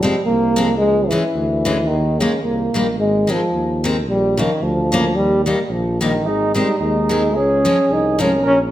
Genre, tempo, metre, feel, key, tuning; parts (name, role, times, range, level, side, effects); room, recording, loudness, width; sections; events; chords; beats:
alpine folk, alpine dance band; 110 BPM; 2/4; swing 55% on 8ths; Ab major; A4 = 440 Hz
warm euphonium; melody; 0.0-8.6 s; Db3 to Eb4; -17 LUFS; equal
picked steel-string acoustic guitar; accompaniment; 0.0-8.3 s; Db3 to Db4; -22 LUFS; left 2 dB
mellow tuba; bass; 0.0-8.7 s; Ab1 to Eb2; -22 LUFS; equal
dark trumpet; second line; 6.3-8.6 s; Eb4 to Bb4; -23 LUFS; right 4 dB
moderate recital hall reverb, RT60 1.7 s; -15 LUFS; side -13 dB against mid
0.0-8.7 A section
0.0 Fm; 0.8 Dbm; 1.9 Ebsus4; 2.4 Eb; 3.0 Ab; 4.1 Bbm; 5.2 Eb; 6.3 Ab; 7.4 Db
0.28 | 0.81 1.36 | 1.90 2.45 | 3.00 3.55 | 4.09 4.64 | 5.18 5.72 | 6.26 6.81 | 7.36 7.90 | 8.45